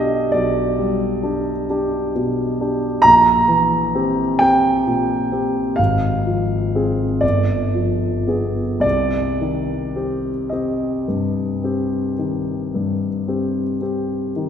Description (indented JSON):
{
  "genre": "classical, romantic nocturne for solo piano",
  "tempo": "35-46 BPM (dotted quarters)",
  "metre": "12/8",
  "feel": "rubato",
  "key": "C minor",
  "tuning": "A4 = 441 Hz",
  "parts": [
    { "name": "warm concert grand piano", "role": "solo", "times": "0.0-14.5 s", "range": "G1 to Bb5", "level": "-17 LUFS", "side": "equal", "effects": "none" }
  ],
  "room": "wet church reverb, RT60 2.7 s",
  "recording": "recorded in a church or concert hall",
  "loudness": "-17 LUFS",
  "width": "side -8 dB against mid",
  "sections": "0.0-14.5 A section",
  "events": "none",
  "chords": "0.0 G/B; 3.0 C7/Bb; 5.8 Fm/Ab; 7.2 G7b9; 8.8 Cm"
}